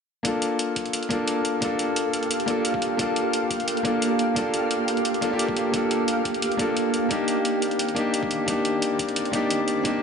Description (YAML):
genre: liquid drum and bass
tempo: 175 BPM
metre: 4/4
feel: swing 54% on 16ths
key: G minor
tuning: A4 = 440 Hz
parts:
  - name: clear concert grand piano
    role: accompaniment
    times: 0.2-10.0 s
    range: Bb3 to A4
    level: -24 LUFS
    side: left 2 dB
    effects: ping-pong delay
  - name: shimmering ambient pad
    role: sustained chords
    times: 1.1-10.0 s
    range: Eb3 to F5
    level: -27 LUFS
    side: right 3 dB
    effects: chorus, built-in reverb, sidechain pumping
  - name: electronic hi-hat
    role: drums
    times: 0.2-9.9 s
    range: none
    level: -30 LUFS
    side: equal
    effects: studio reverb
  - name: electronic kick drum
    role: drums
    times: 0.2-9.9 s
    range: none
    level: -37 LUFS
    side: right 2 dB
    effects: high-pass filter on kick, studio reverb
room: light reverb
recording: nothing above 11.0 kHz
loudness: -22 LUFS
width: side -6 dB against mid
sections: 0.2-10.0 A section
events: none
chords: 0.2 Gm9; 7.1 Cm9